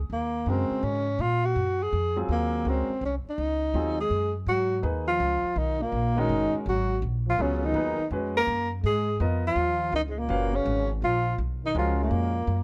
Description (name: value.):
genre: jazz.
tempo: 165 BPM.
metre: 3/4.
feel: swing 66% on 8ths.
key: G# dorian from 4.5 s.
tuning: A4 = 444 Hz.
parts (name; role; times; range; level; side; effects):
upright bass; bass; 0.0-12.6 s; F#1 to Bb2; -31 LUFS; equal; none.
breathy tenor saxophone; melody; 0.1-12.6 s; G#3 to A#4; -29 LUFS; equal; none.
warm grand piano; accompaniment; 0.5-12.3 s; Db3 to E#5; -34 LUFS; equal; none.
breathy trombone; second line; 4.0-12.6 s; G#2 to A#3; -36 LUFS; equal; none.
room: little or no reverb.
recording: close, detailed microphones.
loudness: -27 LUFS.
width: mono.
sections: 0.0-4.5 A section; 4.5-12.6 B section.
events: none.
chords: 0.1 Ebm11; 2.3 Gb5; 4.5 G#m11.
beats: | 0.11 0.47 0.84 | 1.20 1.56 1.93 | 2.29 2.66 3.02 | 3.39 3.75 4.11 | 4.48 4.84 5.21 | 5.57 5.93 6.30 | 6.66 7.03 7.39 | 7.75 8.12 8.48 | 8.85 9.21 9.57 | 9.94 10.30 10.66 | 11.02 11.39 11.75 | 12.11 12.48.